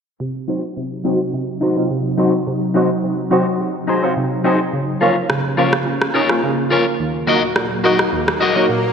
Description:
dancehall; 106 BPM; 4/4; straight; A4 = 440 Hz
wavetable chord stab; accompaniment; 0.2-8.9 s; Eb2 to Ab4; -18 LUFS; right 1 dB; ensemble chorus, low-pass filter
ethereal airy pad; sustained chords; 0.8-8.9 s; Eb2 to F4; -24 LUFS; right 1 dB; ensemble chorus, built-in reverb, tremolo, low-pass filter
electric guitar at the edge of break-up; arpeggios; 0.5-8.7 s; Eb4 to Eb5; -21 LUFS; left 4 dB; low-pass filter
electronic rim click; drums; 5.3-8.4 s; -21 LUFS; equal; gated reverb
swell; sound effects; 7.7-8.9 s; -25 LUFS; right 1 dB
wet lush hall reverb, RT60 1.9 s, digital ambience; bright 1980s-style digital production; -15 LUFS; side -6 dB against mid
0.2-8.9 A section
filter sweep 0.2-8.9; swell 7.7-8.9; break 8.7
0.2 Cdim; 4.7 Bbm/Db; 7.0 Ebm

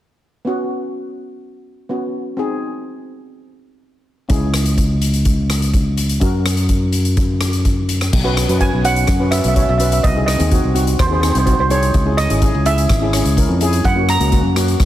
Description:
calypso; 126 BPM; 4/4; straight; B major; A4 = 441 Hz
steel pan; accompaniment; 0.4-14.8 s; A#3 to C#5; -21 LUFS; left 1 dB
modern bright fingered electric bass; bass; 4.3-14.8 s; G#1 to F#2; -17 LUFS; equal
street-band drum kit; drums; 4.3-14.8 s; crash cymbal, hi-hat, kick drum, rim click; -19 LUFS; equal
steel pan; melody; 8.6-14.8 s; B#4 to A#5; -20 LUFS; right 4 dB
light reverb; heavily compressed radio sound; -14 LUFS; side -13 dB against mid
0.5-8.1 A section; 8.1-14.8 B section
0.5 Bsus2; 2.4 G#/B#; 4.3 C#m; 6.2 F#; 8.1 Bsus2; 10.0 G#/B#; 11.9 C#madd9; 13.8 F#

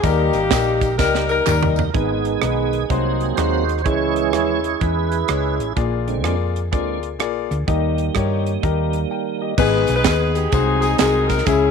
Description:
uptempo gospel; 126 BPM; 4/4; swing 64% on 8ths; A4 = 440 Hz
clear saxophone section; melody; 0.0-1.9, 9.6-11.7 s; A#3 to B4; -20 LUFS; left 3 dB
clear baby grand piano; accompaniment; 0.0-11.7 s; G#2 to G5; -23 LUFS; left 13 dB
tonewheel organ; sustained chords; 0.0-11.7 s; D3 to C#5; -24 LUFS; right 12 dB; fast rotary speaker, chorus vibrato
hollow-body short-scale fingered electric bass; bass; 0.0-11.7 s; G#1 to G2; -22 LUFS; equal
tight funk drum kit; drums; 0.0-11.6 s; crash cymbal, hi-hat, kick drum, rim click, snare drum, toms; -22 LUFS; right 4 dB
tambourine and handclaps; percussion; 0.0-1.8, 9.6-11.6 s; -31 LUFS; right 5 dB
light reverb, small room reverb; 1960s-style stereo with parts hard left and right; -17 LUFS; side -6 dB against mid
0.0-1.9 A section; 1.9-9.6 B section; 9.6-11.7 A section
drum fill 1.0-1.9; tonewheel organ solo 1.9-9.6; break 9.1-9.6
0.0 D#; 1.9 G#m; 2.9 G#7/B#; 3.9 C#m; 5.8 A#7; 7.7 D#; 9.6 G#m; 10.5 G#7/B#

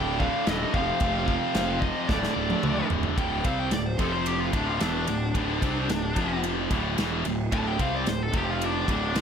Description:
heavy metal; 111 BPM; 4/4; straight; D minor; A4 = 438 Hz
high-gain lead guitar; melody; 0.0-9.2 s; D4 to A5; -30 LUFS; left 1 dB; distortion, tape echo
high-gain lead guitar; second line; 0.0-2.9 s; A3 to D4; -35 LUFS; right 7 dB; distortion, tape echo
biting overdriven guitar; riff; 0.0-9.2 s; D2 to C4; -33 LUFS; equal
scooped high-gain guitar; riff; 0.0-9.2 s; D2 to C4; -32 LUFS; left 14 dB; distortion
tight distorted guitar; riff; 0.0-9.2 s; D2 to C4; -33 LUFS; right 11 dB; distortion
fuzz picked electric bass; bass; 0.0-9.2 s; D1 to D2; -30 LUFS; equal; overdrive
modern studio drum kit; drums; 0.2-9.2 s; china cymbal, kick drum, ride cymbal, snare drum, toms; -30 LUFS; equal
little or no reverb; -24 LUFS; side -7 dB against mid
0.0-3.2 A section; 3.2-9.2 B section
drum fill 2.1-3.2; lead electric guitar solo 3.2-9.2
0.0 D5; 0.7 F5; 2.1 D5; 4.0 F5; 4.5 D5; 6.2 F5; 6.7 D5; 8.3 F5; 8.9 D5

